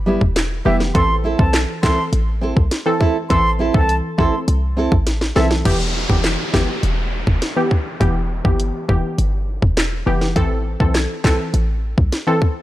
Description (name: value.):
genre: dancehall.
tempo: 102 BPM.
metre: 4/4.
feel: straight.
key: E phrygian.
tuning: A4 = 440 Hz.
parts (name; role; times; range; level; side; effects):
short 808-style bass; bass; 0.0-12.1 s; E1 to C2; -19 LUFS; equal; none.
nylon-string guitar; arpeggios; 0.1-5.5 s; G3 to A4; -21 LUFS; right 3 dB; none.
island pop drum kit; drums; 0.2-12.6 s; crash cymbal, handclaps, hi-hat, kick drum, snare drum; -19 LUFS; equal; none.
concert flute; melody; 0.7-5.5 s; E5 to C6; -22 LUFS; right 1 dB; digital delay.
glassy wavetable pluck; accompaniment; 0.7-12.4 s; E3 to A4; -21 LUFS; equal; chorus, sidechain pumping.
downlifter; sound effects; 5.7-10.4 s; none; -28 LUFS; equal; none.
room: little or no reverb.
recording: none.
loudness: -15 LUFS.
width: side -15 dB against mid.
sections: 0.0-5.7 A section; 5.7-12.6 B section.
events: drum fill 5.1-5.7.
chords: 0.0 Em; 0.9 Am; 5.7 Em; 10.4 Am.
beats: 0.36 | 0.95 1.54 2.12 2.71 | 3.30 3.89 4.48 5.07 | 5.66 6.24 6.83 7.42 | 8.01 8.60 9.18 9.77 | 10.36 10.95 11.54 12.12.